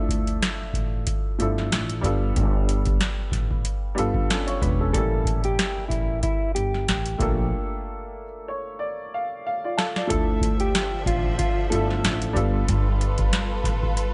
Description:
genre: hip hop, boom-bap hip-hop.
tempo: 93 BPM.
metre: 4/4.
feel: swing 55% on 16ths.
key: D harmonic minor.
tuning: A4 = 440 Hz.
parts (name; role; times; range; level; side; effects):
warm upright piano; accompaniment; 0.0-14.1 s; F3 to A5; -32 LUFS; equal; cassette tape.
upright bass; bass; 0.0-13.9 s; E1 to D2; -29 LUFS; equal; none.
booming analog drum machine; drums; 0.1-14.1 s; hi-hat, kick drum, snare drum; -27 LUFS; equal; none.
mellow electric guitar; melody; 4.9-12.6 s; E4 to A4; -31 LUFS; equal; digital delay.
warm studio string section; sustained chords; 10.1-14.1 s; D3 to E5; -34 LUFS; equal; none.
room: little or no reverb.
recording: nothing above 10.8 kHz.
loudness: -24 LUFS.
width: mono.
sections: 0.0-10.1 A section; 10.1-14.1 B section.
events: break 0.0-2.4, 7.5-10.1; drum fill 8.8-10.1.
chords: 0.0 Dmadd9; 2.0 G9; 4.9 A7b9; 7.2 Bbmaj7; 10.1 Dmadd9; 12.4 G9.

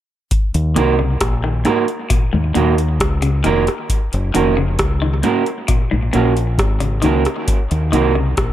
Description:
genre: dub reggae.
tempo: 67 BPM.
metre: 4/4.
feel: straight.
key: Eb dorian.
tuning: A4 = 439 Hz.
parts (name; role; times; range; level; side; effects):
booming analog drum machine; drums; 0.3-8.5 s; hi-hat, kick drum, rim click; -19 LUFS; equal; none.
deep dub fingered electric bass; bass; 0.5-8.5 s; F1 to Eb2; -18 LUFS; left 1 dB; none.
electric guitar at the edge of break-up; accompaniment; 0.8-8.1 s; Bb3 to Bb4; -19 LUFS; right 5 dB; dub echo.
electric guitar at the edge of break-up; arpeggios; 0.8-8.3 s; Ab2 to Eb3; -23 LUFS; left 5 dB; phaser, dub echo.
room: light reverb, digital ambience.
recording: none.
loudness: -14 LUFS.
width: side -12 dB against mid.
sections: 0.3-8.5 A section.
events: none.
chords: 0.3 Ebm; 3.9 Gb; 7.5 Ebm.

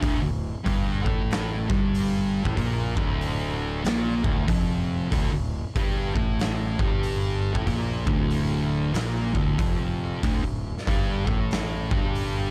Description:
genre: stoner and doom metal.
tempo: 94 BPM.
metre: 4/4.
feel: swing 62% on 8ths.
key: D minor.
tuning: A4 = 440 Hz.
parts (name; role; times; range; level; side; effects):
thick fuzz guitar; riff; 0.0-12.5 s; D2 to Bb3; -29 LUFS; equal; distortion.
fuzz fingered electric bass; bass; 0.0-12.5 s; D1 to Bb1; -33 LUFS; equal; overdrive.
oversized low-tuned drum kit; drums; 0.0-12.3 s; hi-hat, kick drum, snare drum; -30 LUFS; equal; none.
room: little or no reverb.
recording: dark, warm production.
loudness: -25 LUFS.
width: mono.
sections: 0.0-12.5 A section.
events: none.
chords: 0.0 Dm.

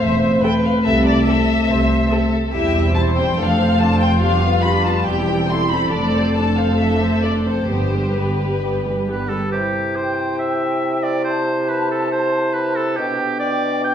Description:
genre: quick classical-period movement for symphony orchestra.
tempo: 130-145 BPM.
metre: 4/4.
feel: rubato.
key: C major.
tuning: A4 = 441 Hz.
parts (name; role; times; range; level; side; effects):
muted chamber violin section; melody; 0.0-9.1 s; B4 to C6; -22 LUFS; left 3 dB; none.
muted chamber violin section; second line; 0.0-9.3 s; F4 to C5; -24 LUFS; left 3 dB; none.
mellow French horn section; sustained chords; 0.0-9.5 s; D3 to D4; -20 LUFS; left 1 dB; none.
muted chamber cello section; bass; 0.0-9.3 s; E2 to C3; -24 LUFS; right 1 dB; none.
muted chamber double bass section; bass; 0.0-9.3 s; E1 to C2; -23 LUFS; right 2 dB; none.
muted chamber viola section; accompaniment; 0.4-9.5 s; G3 to C5; -25 LUFS; right 2 dB; none.
warm oboe; second line; 9.1-13.9 s; G4 to G5; -22 LUFS; right 1 dB; none.
mellow clarinet; second line; 9.5-13.9 s; D4 to E4; -26 LUFS; left 1 dB; none.
small flute group; second line; 9.5-13.9 s; G5 to A5; -26 LUFS; equal; none.
mellow bassoon; accompaniment; 9.5-13.9 s; B2 to C3; -23 LUFS; equal; none.
room: wet recital hall reverb, RT60 1.5 s.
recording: heard from further back in the room.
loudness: -16 LUFS.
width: side -9 dB against mid.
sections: 0.0-9.5 A section; 9.5-13.9 B section.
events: none.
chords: 0.0 Am; 0.9 Am/C; 2.5 C/E; 3.4 Dm7/F; 4.2 G7/F; 5.1 C/E; 5.9 Dm7/F; 7.7 G; 9.5 C; 13.0 G/B.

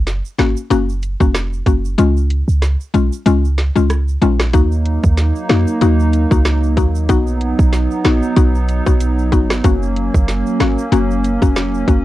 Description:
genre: dancehall.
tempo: 94 BPM.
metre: 4/4.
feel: swing 56% on 16ths.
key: unclear.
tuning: A4 = 440 Hz.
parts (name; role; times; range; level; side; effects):
mallet-like synth pluck; accompaniment; 0.0-12.0 s; Ab3 to Gb4; -18 LUFS; left 6 dB; chorus, sidechain pumping, cassette tape.
clean 808-style bass; bass; 0.0-12.0 s; F1 to F2; -16 LUFS; right 1 dB; none.
island pop drum kit; drums; 0.1-12.0 s; hi-hat, kick drum, rim click, snare drum; -16 LUFS; right 1 dB; overdrive, cassette tape.
tube shaker and timbales; percussion; 0.1-12.0 s; none; -36 LUFS; right 10 dB; none.
hollow soft pad; sustained chords; 4.5-12.0 s; Gb3 to Eb4; -20 LUFS; right 2 dB; chorus, sidechain pumping, cassette tape.
room: little or no reverb.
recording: home recording on cassette.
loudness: -13 LUFS.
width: side -15 dB against mid.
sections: 0.0-12.0 A section.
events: kick muted 2.0-4.5.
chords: 0.0 Gb; 2.0 Db; 4.5 Ebm; 7.1 B; 9.6 Gb.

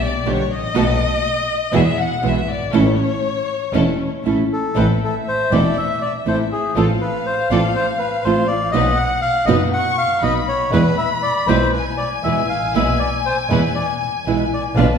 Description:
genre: tango.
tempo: 120 BPM.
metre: 4/4.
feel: rubato.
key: A major.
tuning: A4 = 439 Hz.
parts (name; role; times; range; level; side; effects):
rich chamber violin section; second line; 0.0-15.0 s; C#5 to C#6; -23 LUFS; left 4 dB; none.
clear symphonic string section; stabs; 0.2-15.0 s; B3 to B4; -30 LUFS; left 1 dB; none.
nylon-string guitar; accompaniment; 0.3-14.9 s; B2 to G4; -20 LUFS; right 3 dB; none.
rich double bass; bass; 0.3-15.0 s; E1 to E2; -22 LUFS; equal; none.
bandoneon; melody; 4.5-14.9 s; G#4 to F#5; -20 LUFS; left 1 dB; none.
room: wet scoring stage reverb, RT60 1.7 s.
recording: recorded in a church or concert hall.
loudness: -16 LUFS.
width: side -7 dB against mid.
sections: 0.0-4.8 A section; 4.8-15.0 B section.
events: violin section solo 0.0-4.8.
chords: 0.0 G; 0.8 B7; 1.7 Eadd9; 2.7 A; 4.8 Am; 6.8 F/A; 8.7 B; 10.7 E.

